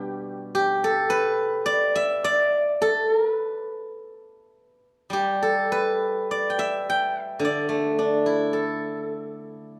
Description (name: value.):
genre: chinese traditional, Chinese solo plucked strings.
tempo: 53 BPM.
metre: 2/4.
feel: uneven beats, rubato.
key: G gong mode.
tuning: A4 = 440 Hz.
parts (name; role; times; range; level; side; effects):
steel-string zither; solo; 0.0-9.8 s; B2 to G5; -24 LUFS; equal; none.
room: light reverb.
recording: lossy compression artefacts.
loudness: -24 LUFS.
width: mono.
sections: 0.0-9.8 A section.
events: none.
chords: none.